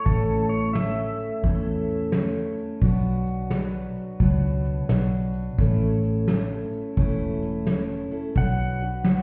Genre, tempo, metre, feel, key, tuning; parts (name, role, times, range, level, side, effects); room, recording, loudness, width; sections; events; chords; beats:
honky-tonk and classic country; 87 BPM; 4/4; swing 64% on 8ths; A4 = 442 Hz
pedal steel guitar; melody; 0.0-2.1, 8.4-9.2 s; A4 to F#5; -32 LUFS; equal
picked steel-string acoustic guitar; accompaniment; 0.0-9.2 s; A2 to B4; -29 LUFS; equal
vintage muted fingered electric bass; bass; 0.1-9.2 s; E1 to E2; -27 LUFS; equal
soft brush drum kit; drums; 0.1-9.2 s; hi-hat, kick drum, snare drum; -27 LUFS; equal
light reverb; heard muffled through a wall, cassette tape, stone room reverb, EQ; -24 LUFS; mono
0.0-9.2 A section
0.0 A; 2.8 Bm; 5.6 A; 8.4 Bm
| 0.06 0.75 1.44 2.13 | 2.83 3.52 4.21 4.90 | 5.59 6.28 6.97 7.67 | 8.36 9.05